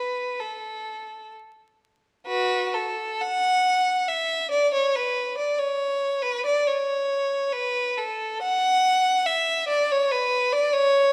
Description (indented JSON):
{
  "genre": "classical, baroque-style suite movement for unaccompanied violin",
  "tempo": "69 BPM",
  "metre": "3/4",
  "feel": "uneven beats, rubato",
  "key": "unclear",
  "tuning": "A4 = 440 Hz",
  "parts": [
    { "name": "rich violin", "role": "solo", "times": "0.0-11.1 s", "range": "F#4 to F#5", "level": "-24 LUFS", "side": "equal", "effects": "none" }
  ],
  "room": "moderate recital hall reverb, RT60 1.4 s",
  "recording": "vinyl crackle",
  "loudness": "-24 LUFS",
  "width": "mono",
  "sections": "0.0-2.3 A section; 2.3-11.1 B section",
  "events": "none",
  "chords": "none"
}